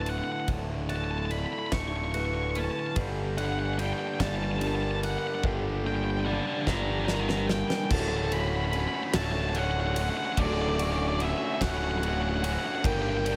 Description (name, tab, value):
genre	post-rock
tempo	49 BPM (dotted quarters)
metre	6/8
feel	straight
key	D major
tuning	A4 = 440 Hz
part	octave-fuzz lead guitar	melody	0.0-13.4 s	D5 to C#6	-35 LUFS	equal	distortion, slapback echo
part	evolving wavetable pad	sustained chords	0.1-13.4 s	D3 to B5	-45 LUFS	equal	none
part	twangy electric guitar	arpeggios	0.0-3.0 s	D2 to F#4	-47 LUFS	equal	slapback echo
part	vibraphone with soft mallets	arpeggios	0.0-13.4 s	A4 to C#6	-40 LUFS	equal	slapback echo
part	distorted electric guitar	riff	0.0-13.4 s	D2 to G4	-38 LUFS	equal	distortion
part	fuzz picked electric bass	bass	0.0-13.4 s	D1 to G1	-34 LUFS	equal	overdrive
part	huge arena drum kit	drums	0.1-13.4 s	crash cymbal, kick drum, ride cymbal, snare drum	-37 LUFS	equal	none
part	overdriven electric guitar	riff	3.0-13.4 s	D2 to G4	-37 LUFS	equal	spring reverb
room	light reverb, small room ambience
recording	none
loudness	-29 LUFS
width	mono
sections	0.0-7.9 A section; 7.9-13.4 B section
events	build-up 0.0-7.9; drum fill 6.7-7.9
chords	0.0 Dmaj7; 3.0 Gmadd9; 7.9 Dmaj7; 12.8 Gm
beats	| 0.49 1.73 | 2.97 4.21 | 5.44 6.67 | 7.91 9.14 | 10.37 11.61 | 12.84